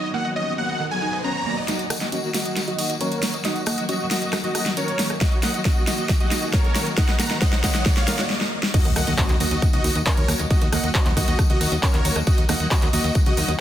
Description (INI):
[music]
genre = uplifting trance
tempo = 136 BPM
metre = 4/4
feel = straight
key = Eb minor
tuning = A4 = 441 Hz
[part]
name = dense compressed supersaw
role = melody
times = 0.0-13.5 s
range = Gb4 to Bb5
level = -27 LUFS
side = right 1 dB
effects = cassette tape, sidechain pumping, low-pass filter, digital delay
[part]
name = dark symphonic string section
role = sustained chords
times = 0.0-13.5 s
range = D#3 to F#4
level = -30 LUFS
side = left 2 dB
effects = sidechain pumping
[part]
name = riser and impact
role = sound effects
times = 0.1-10.5 s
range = none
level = -33 LUFS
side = equal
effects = none
[part]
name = analog pluck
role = arpeggios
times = 0.1-13.5 s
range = D#3 to D#5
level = -31 LUFS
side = right 4 dB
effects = chorus, sidechain pumping, digital delay
[part]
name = big-room dance drum kit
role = drums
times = 1.7-13.6 s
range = crash cymbal, handclaps, hi-hat, rim click, snare drum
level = -26 LUFS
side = equal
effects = none
[part]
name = tambourine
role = percussion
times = 1.7-13.6 s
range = none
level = -31 LUFS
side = left 4 dB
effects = none
[part]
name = electronic kick drum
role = drums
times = 5.2-13.2 s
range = none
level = -20 LUFS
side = equal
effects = none
[part]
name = tight sequencer bass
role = bass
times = 8.9-13.6 s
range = Db2 to Eb2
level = -25 LUFS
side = equal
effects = sidechain pumping
[sound]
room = light reverb, digital ambience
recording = dense, heavily limited modern master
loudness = -19 LUFS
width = side -12 dB against mid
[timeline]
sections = 0.0-1.7 A section; 1.7-8.7 B section; 8.7-13.6 C section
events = riser 0.1-1.7, 1.7-8.3; build-up 1.7-8.7; drum fill 1.7-8.3, 8.3-8.7; filter sweep on supersaw synth 1.7-8.7; filter sweep on synth pluck 1.7-8.7; stop 8.3-8.7; drop 8.7-13.6; impact 8.7-10.5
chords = 0.0 B; 1.7 Ebm